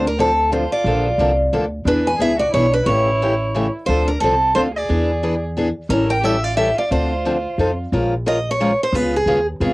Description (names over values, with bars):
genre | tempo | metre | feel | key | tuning
acoustic string swing (jazz manouche) | 178 BPM | 3/4 | swing 60% on 8ths | D minor | A4 = 440 Hz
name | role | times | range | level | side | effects
picked steel-string acoustic guitar | melody | 0.0-9.5 s | Ab4 to G#5 | -19 LUFS | equal | cassette tape
warm violin | second line | 0.0-7.7 s | C4 to B4 | -27 LUFS | right 2 dB | cassette tape
picked steel-string acoustic guitar | accompaniment | 0.0-9.7 s | C#3 to Bb4 | -20 LUFS | left 1 dB | cassette tape
upright bass | bass | 0.0-9.7 s | A1 to F2 | -22 LUFS | equal | none
room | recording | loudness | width
light reverb | home recording on cassette | -16 LUFS | side -21 dB against mid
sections
0.0-7.9 A section; 7.9-9.7 B section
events
none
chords
0.0 Dm7; 0.9 Bbmaj7; 1.9 E7; 2.9 A7; 3.9 Dm7; 4.9 E7; 5.9 A7; 6.9 Dm7; 7.6 F7; 7.9 Bbm7; 8.9 Db7